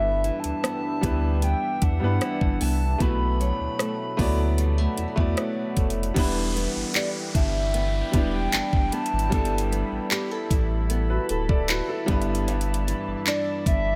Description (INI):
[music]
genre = contemporary R&B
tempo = 76 BPM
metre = 4/4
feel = straight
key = E minor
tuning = A4 = 440 Hz
[part]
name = hollow clarinet-like synth lead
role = melody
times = 0.0-14.0 s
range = D5 to B5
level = -32 LUFS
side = equal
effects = chorus, phaser
[part]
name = warm concert grand piano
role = accompaniment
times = 0.0-14.0 s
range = G3 to D5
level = -32 LUFS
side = equal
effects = none
[part]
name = deep dark ambient pad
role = sustained chords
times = 0.0-14.0 s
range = D4 to B5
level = -38 LUFS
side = equal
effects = chorus, built-in reverb
[part]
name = flamenco guitar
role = arpeggios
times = 0.0-14.0 s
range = G2 to A4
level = -34 LUFS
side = equal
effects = none
[part]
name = warm sub bass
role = bass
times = 0.0-14.0 s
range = D1 to G2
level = -28 LUFS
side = equal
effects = none
[part]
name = trap drum kit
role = drums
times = 0.2-13.8 s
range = crash cymbal, handclaps, hi-hat, kick drum, rim click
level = -27 LUFS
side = equal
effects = none
[part]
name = downlifter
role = sound effects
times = 6.2-12.5 s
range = none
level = -39 LUFS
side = equal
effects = none
[sound]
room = little or no reverb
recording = none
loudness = -24 LUFS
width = mono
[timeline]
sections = 0.0-6.2 A section; 6.2-14.0 B section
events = none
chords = 0.0 Em7/G; 3.0 B7sus4; 6.2 Em7; 9.3 G69; 12.1 Em7/G